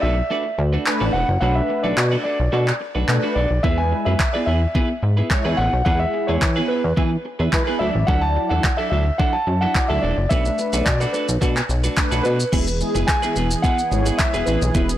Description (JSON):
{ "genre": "dance-pop", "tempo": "108 BPM", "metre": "4/4", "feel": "straight", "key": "unclear", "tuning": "A4 = 440 Hz", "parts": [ { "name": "warm grand piano", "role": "melody", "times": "0.0-15.0 s", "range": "B4 to A5", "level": "-24 LUFS", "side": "equal", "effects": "digital delay" }, { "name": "twelve-string electric guitar", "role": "riff", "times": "0.0-14.9 s", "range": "F#3 to B4", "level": "-26 LUFS", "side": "right 3 dB", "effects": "wide subtle chorus" }, { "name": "chorused synth bass", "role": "bass", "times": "0.0-14.9 s", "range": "E1 to E3", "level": "-20 LUFS", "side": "equal", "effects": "sidechain pumping" }, { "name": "mellow synth brass", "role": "accompaniment", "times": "0.9-14.9 s", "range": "F#3 to D5", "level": "-27 LUFS", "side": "left 1 dB", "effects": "chorus, sidechain pumping" }, { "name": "pop drum kit", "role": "drums", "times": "0.9-15.0 s", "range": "crash cymbal, handclaps, hi-hat, kick drum, shaker", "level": "-22 LUFS", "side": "equal", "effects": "overdrive" }, { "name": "sweeping resonant pad", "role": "sustained chords", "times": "12.5-15.0 s", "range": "E3 to G#4", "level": "-28 LUFS", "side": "right 2 dB", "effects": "chorus, sidechain pumping" } ], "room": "light reverb", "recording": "blown-out, overdriven recording, overdrive", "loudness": "-17 LUFS", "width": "side -12 dB against mid", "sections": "0.0-12.5 A section; 12.5-15.0 B section", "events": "none", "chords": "0.0 Bm7; 3.6 E; 7.8 Dadd9; 10.3 Bm7; 12.5 E" }